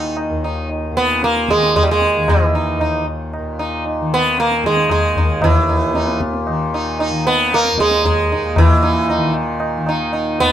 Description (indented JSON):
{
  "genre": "indian classical, Hindustani",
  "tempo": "114 BPM",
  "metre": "3/4",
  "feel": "straight",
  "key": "unclear",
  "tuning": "A4 = 440 Hz",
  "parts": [
    { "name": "sitar", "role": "melody", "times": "0.0-10.5 s", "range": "Fb3 to Eb4", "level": "-16 LUFS", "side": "right 2 dB", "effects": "none" },
    { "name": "tanpura", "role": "drone", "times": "0.0-10.5 s", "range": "Eb2 to Eb3", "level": "-22 LUFS", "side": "left 1 dB", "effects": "none" },
    { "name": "tabla", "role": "percussion", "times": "0.2-10.3 s", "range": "none", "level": "-20 LUFS", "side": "left 1 dB", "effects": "none" }
  ],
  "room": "moderate stone room reverb, RT60 1.1 s",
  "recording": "band playing live in one room",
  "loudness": "-14 LUFS",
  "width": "side -10 dB against mid",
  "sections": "0.0-8.6 A section; 8.6-10.5 B section",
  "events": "none",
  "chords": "none",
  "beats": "0.17 | 0.70 1.22 1.75 | 2.27 2.80 3.32 | 3.85 4.37 4.90 | 5.42 5.95 6.47 | 7.00 7.52 8.04 | 8.57 9.09 9.62 | 10.14"
}